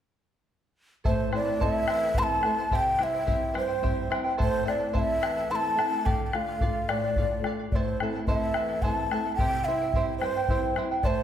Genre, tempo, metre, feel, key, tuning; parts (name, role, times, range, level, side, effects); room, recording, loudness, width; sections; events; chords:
andean folk, Andean ensemble; 72 BPM (dotted quarters); 6/8; straight; A minor; A4 = 437 Hz
charango; accompaniment; 1.0-11.2 s; E4 to A5; -33 LUFS; right 2 dB
nylon-string guitar; accompaniment; 1.0-11.2 s; E2 to F4; -33 LUFS; left 1 dB
bombo; percussion; 1.0-11.2 s; -29 LUFS; left 1 dB
breathy mellow large quena; melody; 1.1-11.2 s; C5 to C6; -28 LUFS; equal
wet recital hall reverb, RT60 1.4 s; recorded in a church or concert hall; -24 LUFS; side -10 dB against mid
1.1-11.2 A section
1.1 Am; 2.7 C; 4.4 Am; 6.1 Dm; 7.7 Am; 9.4 C